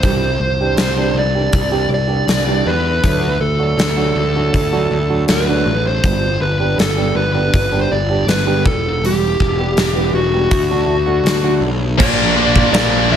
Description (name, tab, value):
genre	quiet-loud alternative rock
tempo	80 BPM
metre	4/4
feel	straight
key	unclear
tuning	A4 = 440 Hz
part	smooth overdriven lead guitar	melody	0.0-13.2 s	F#4 to F5	-18 LUFS	equal	none
part	fingerpicked steel-string acoustic guitar	arpeggios	0.0-11.7 s	D3 to G4	-22 LUFS	right 6 dB	none
part	fuzz picked electric bass	bass	0.0-13.2 s	E1 to E2	-19 LUFS	equal	overdrive
part	huge arena drum kit	drums	0.0-12.9 s	crash cymbal, hi-hat, kick drum, snare drum	-19 LUFS	left 1 dB	none
part	scooped high-gain guitar	riff	12.0-13.2 s	Bb2 to D4	-18 LUFS	left 13 dB	distortion
part	thick fuzz guitar	riff	12.0-13.2 s	Bb2 to Bb3	-17 LUFS	right 12 dB	distortion
room	light reverb, small room ambience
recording	none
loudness	-13 LUFS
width	side -9 dB against mid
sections	0.0-12.0 A section; 12.0-13.2 B section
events	none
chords	0.0 Cadd9; 3.0 D; 6.0 G; 8.6 Em; 10.5 D; 12.0 Bb